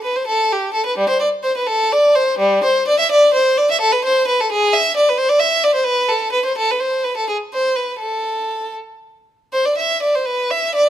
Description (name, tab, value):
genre	classical, baroque-style suite movement for unaccompanied violin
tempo	77-88 BPM (dotted quarters)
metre	6/8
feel	rubato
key	A minor from 3.8 s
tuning	A4 = 442 Hz
part	rich violin	solo	0.0-10.9 s	G3 to E5	-14 LUFS	equal	none
room	moderate stone room reverb, RT60 1.2 s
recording	close, detailed microphones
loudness	-14 LUFS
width	side -11 dB against mid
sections	0.0-9.5 A section; 9.5-10.9 B section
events	none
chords	none